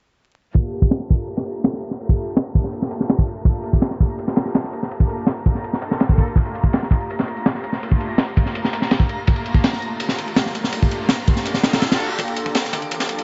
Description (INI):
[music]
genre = drum and bass, jungle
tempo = 165 BPM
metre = 4/4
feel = straight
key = G minor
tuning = A4 = 442 Hz
[part]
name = rich symphonic string section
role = sustained chords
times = 0.5-13.2 s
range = A3 to A4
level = -30 LUFS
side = equal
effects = low-pass filter
[part]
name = crunchy breakbeat drum kit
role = drums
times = 0.5-13.2 s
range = kick drum, ride cymbal, snare drum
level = -21 LUFS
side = equal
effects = high-pass filter on kick, low-pass filter on kick, high-pass filter on cymbals, low-pass filter on cymbals, high-pass filter on snare, low-pass filter on snare, high-pass filter on room, low-pass filter on room
[part]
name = dusty soul sampler-style drum kit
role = drums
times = 0.5-13.2 s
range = hi-hat, snare drum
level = -37 LUFS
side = equal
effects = none
[part]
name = twinkling granular texture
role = texture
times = 1.6-13.2 s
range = Bb5 to D6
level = -37 LUFS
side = equal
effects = built-in reverb
[part]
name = riser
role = sound effects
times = 10.0-13.2 s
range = none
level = -34 LUFS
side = equal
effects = none
[sound]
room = light reverb, small room ambience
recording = vinyl crackle, low-pass filter, nothing above 7.8 kHz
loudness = -20 LUFS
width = mono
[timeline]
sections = 0.5-12.2 A section; 12.2-13.2 B section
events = filter sweep on drum 0.5-12.2; filter sweep 0.5-12.2; riser 10.1-12.2, 12.2-13.2; build-up 12.2-13.2; filter sweep on string section 12.2-13.2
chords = 0.5 Gm9